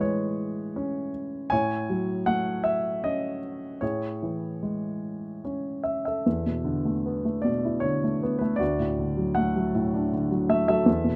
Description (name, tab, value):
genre	classical, lyrical solo piano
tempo	72-82 BPM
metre	3/4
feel	rubato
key	A lydian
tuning	A4 = 440 Hz
part	warm grand piano	solo	0.0-11.2 s	D2 to G#5	-27 LUFS	equal	none
room	light reverb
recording	close, detailed microphones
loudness	-27 LUFS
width	mono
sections	0.0-6.3 A section; 6.3-11.2 B section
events	none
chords	0.0 Amaj7; 1.5 F#m/A; 3.8 Amaj7; 6.3 E7sus4; 8.6 D